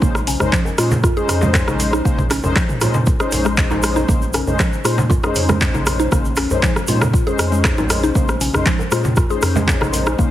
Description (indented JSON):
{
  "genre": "afro house",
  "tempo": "118 BPM",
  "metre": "4/4",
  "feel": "straight",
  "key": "Bb minor",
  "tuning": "A4 = 439 Hz",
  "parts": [
    { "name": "mallet-like synth pluck", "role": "arpeggios", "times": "0.0-10.3 s", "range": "F3 to Ab4", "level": "-23 LUFS", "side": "equal", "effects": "chorus, phaser, sidechain pumping, dub echo" },
    { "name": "mellow synth brass", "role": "stabs", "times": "0.0-10.3 s", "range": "Ab3 to C5", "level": "-22 LUFS", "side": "left 3 dB", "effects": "chorus, sidechain pumping, dub echo" },
    { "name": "warm sub bass", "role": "bass", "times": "0.0-10.3 s", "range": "Bb1 to Bb2", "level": "-22 LUFS", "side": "equal", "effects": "sidechain pumping" },
    { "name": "electronic kick drum", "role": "drums", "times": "0.0-10.3 s", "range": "none", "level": "-18 LUFS", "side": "equal", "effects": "none" },
    { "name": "congas", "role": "percussion", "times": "0.0-10.3 s", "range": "none", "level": "-26 LUFS", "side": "right 2 dB", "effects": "none" },
    { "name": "djembe", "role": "percussion", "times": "0.0-10.0 s", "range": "none", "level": "-28 LUFS", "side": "left 1 dB", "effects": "none" },
    { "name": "tube shaker", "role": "percussion", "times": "0.0-10.3 s", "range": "none", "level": "-31 LUFS", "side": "right 3 dB", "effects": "none" },
    { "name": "deep house drum kit", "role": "drums", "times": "0.1-10.2 s", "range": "handclaps, hi-hat, rim click, toms", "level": "-22 LUFS", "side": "equal", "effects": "none" }
  ],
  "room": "light reverb, digital ambience",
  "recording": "heavily compressed radio sound, multiband compression",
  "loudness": "-14 LUFS",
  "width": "side -13 dB against mid",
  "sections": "0.0-10.3 A section",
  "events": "none",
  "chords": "0.0 Bbm11"
}